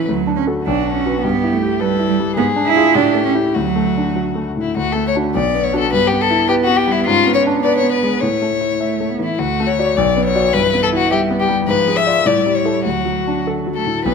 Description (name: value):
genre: quick classical-period movement for piano trio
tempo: 103 BPM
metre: 2/4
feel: straight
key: D major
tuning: A4 = 438 Hz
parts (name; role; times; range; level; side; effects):
- rich violin; melody; 0.0-14.1 s; E4 to E5; -18 LUFS; left 7 dB; none
- rich cello; second line; 0.0-14.1 s; E3 to E4; -20 LUFS; right 8 dB; none
- clear grand piano; accompaniment; 0.0-14.1 s; B1 to E5; -18 LUFS; left 1 dB; none
room: moderate scoring stage reverb, RT60 1.7 s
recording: close, detailed microphones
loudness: -14 LUFS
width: side -5 dB against mid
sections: 0.0-4.8 A section; 4.8-14.1 A section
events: none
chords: 0.1 D; 0.7 Bm; 1.2 Em/G; 2.4 G#dim7(no3); 3.0 A7(no3); 3.6 D; 5.3 Bm; 5.9 Em/G; 7.1 G#dim; 8.2 A; 9.4 D; 10.0 Bm; 10.5 Em/G; 11.7 G#dim7; 12.3 A7; 12.9 D